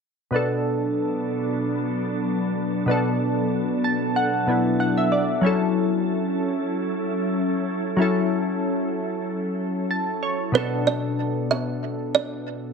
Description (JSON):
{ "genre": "afrobeats", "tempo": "94 BPM", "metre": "4/4", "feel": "swing 55% on 16ths", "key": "B minor", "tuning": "A4 = 440 Hz", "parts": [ { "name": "glassy digital keys", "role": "accompaniment", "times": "0.3-12.7 s", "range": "B2 to A5", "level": "-23 LUFS", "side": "left 1 dB", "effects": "chorus" }, { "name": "glassy FM pad", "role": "sustained chords", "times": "0.7-10.5 s", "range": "F#3 to A4", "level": "-26 LUFS", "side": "equal", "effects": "ensemble chorus, built-in reverb" }, { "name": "buzzing kalimba", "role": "riff", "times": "10.6-12.2 s", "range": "B4 to E5", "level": "-24 LUFS", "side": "right 7 dB", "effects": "analog delay" } ], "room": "moderate spring reverb, RT60 1.6 s, studio ambience", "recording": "echo-heavy mix", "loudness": "-21 LUFS", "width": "side -5 dB against mid", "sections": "0.3-10.5 A section; 10.5-12.7 B section", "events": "synth keys fill 3.5-5.4, 9.6-10.5", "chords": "0.3 Bm7; 5.4 F#m7; 10.5 Bm7", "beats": "| 0.33 0.97 1.61 2.25 | 2.88 3.52 4.16 4.80 | 5.44 6.08 6.71 7.35 | 7.99 8.63 9.27 9.91 | 10.54 11.18 11.82 12.46" }